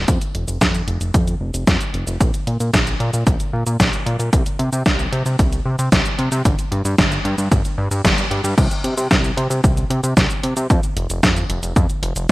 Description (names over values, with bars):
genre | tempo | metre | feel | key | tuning
italo disco | 113 BPM | 4/4 | straight | unclear | A4 = 440 Hz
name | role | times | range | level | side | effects
fat analog bass | bass | 0.0-12.3 s | F1 to C3 | -20 LUFS | equal | none
detuned 8-bit digital drum machine | drums | 0.1-12.3 s | cabasa, crash cymbal, hi-hat, snare drum | -20 LUFS | equal | overdrive, studio reverb
electronic kick drum | drums | 0.1-12.3 s | none | -18 LUFS | equal | overdrive, studio reverb
room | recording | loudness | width
light reverb | bright 1980s-style digital production, vinyl crackle | -16 LUFS | side -20 dB against mid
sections
0.1-8.6 A section; 8.6-12.3 B section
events
none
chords
none